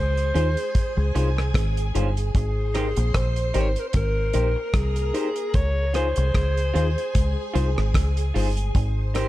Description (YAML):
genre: lovers rock reggae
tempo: 75 BPM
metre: 4/4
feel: swing 55% on 16ths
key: unclear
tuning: A4 = 440 Hz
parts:
  - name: dark alto saxophone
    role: melody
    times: 0.0-8.3 s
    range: Ab4 to Db5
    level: -28 LUFS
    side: left 1 dB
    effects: tape echo
  - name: string machine, full ensemble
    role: second line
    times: 0.0-9.3 s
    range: Ab4 to C6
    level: -34 LUFS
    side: equal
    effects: ensemble chorus
  - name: deep dub fingered electric bass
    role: bass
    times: 0.0-9.3 s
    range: G1 to Eb2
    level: -23 LUFS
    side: equal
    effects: none
  - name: damped 70s drum kit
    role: drums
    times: 0.2-9.3 s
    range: hi-hat, kick drum, rim click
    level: -24 LUFS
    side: equal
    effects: none
  - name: mellow tine electric piano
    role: accompaniment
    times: 0.3-9.3 s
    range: Eb4 to C5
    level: -31 LUFS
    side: left 6 dB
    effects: medium stereo tremolo
  - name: electric guitar through a small old amp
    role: stabs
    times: 0.3-9.3 s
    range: Db4 to C5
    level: -32 LUFS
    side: right 4 dB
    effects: tremolo
room: small room ambience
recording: dark, warm production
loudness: -20 LUFS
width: side -15 dB against mid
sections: 0.0-9.3 A section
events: none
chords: 0.0 Dbmaj7; 2.3 Abmaj7; 5.5 Dbmaj7; 8.7 Abmaj7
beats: 0.74 1.54 | 2.35 3.15 3.94 4.75 | 5.54 6.34 7.14 7.94 | 8.74